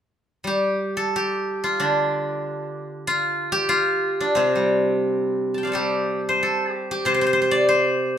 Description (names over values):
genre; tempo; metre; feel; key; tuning
chinese traditional, Chinese solo plucked strings; 87-96 BPM; 2/4; rubato; G shang mode; A4 = 440 Hz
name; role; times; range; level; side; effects
steel-string zither; solo; 0.4-8.2 s; C3 to A5; -20 LUFS; equal; none
room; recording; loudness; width
moderate large studio reverb, RT60 0.9 s; band playing live in one room; -20 LUFS; side -9 dB against mid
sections
0.5-8.2 A section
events
none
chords
none